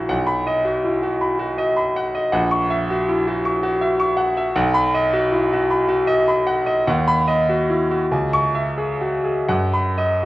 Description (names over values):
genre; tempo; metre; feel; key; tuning
classical, romantic character piece for solo piano; 40-56 BPM (dotted quarters); 6/8; rubato; B major; A4 = 445 Hz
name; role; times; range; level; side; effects
bright grand piano; solo; 0.0-10.3 s; A#1 to C#6; -17 LUFS; equal; none
room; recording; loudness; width
wet recital hall reverb, RT60 1.8 s; worn, warbling old tape, cassette tape, warbly pitch drift; -17 LUFS; side -17 dB against mid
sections
0.0-10.3 A section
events
none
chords
0.1 B; 2.3 F#7/A#; 4.6 B; 6.9 B/D#; 8.1 C#m; 9.5 B/F#